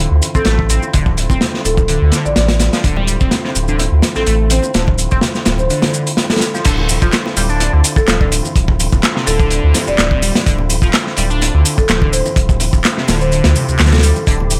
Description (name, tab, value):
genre	breakbeat, breaks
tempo	126 BPM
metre	4/4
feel	swing 53% on 16ths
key	D minor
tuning	A4 = 440 Hz
part	tonewheel organ	sustained chords	0.0-14.6 s	D3 to G4	-28 LUFS	equal	overdrive, fast rotary speaker, sidechain pumping
part	saturated sub bass	bass	0.0-14.6 s	D1 to D2	-18 LUFS	equal	none
part	crunchy breakbeat drum kit	drums	0.2-14.6 s	crash cymbal, hi-hat, kick drum, snare drum	-18 LUFS	equal	none
part	house drum kit	drums	0.2-14.6 s	handclaps, hi-hat, shaker	-23 LUFS	equal	none
part	congas and bongos	percussion	0.2-14.6 s	none	-30 LUFS	equal	none
part	overdriven synth lead	riff	0.3-14.3 s	C3 to D4	-24 LUFS	equal	phaser, tube saturation, analog chorus, vintage 12-bit sampler grit, dub echo
part	marimba with medium mallets	melody	0.4-14.4 s	A4 to D5	-24 LUFS	equal	telephone sound, dub echo
room	small room ambience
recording	none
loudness	-14 LUFS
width	mono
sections	0.0-6.7 A section; 6.7-14.6 B section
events	drop 6.7-14.6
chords	0.0 Dm9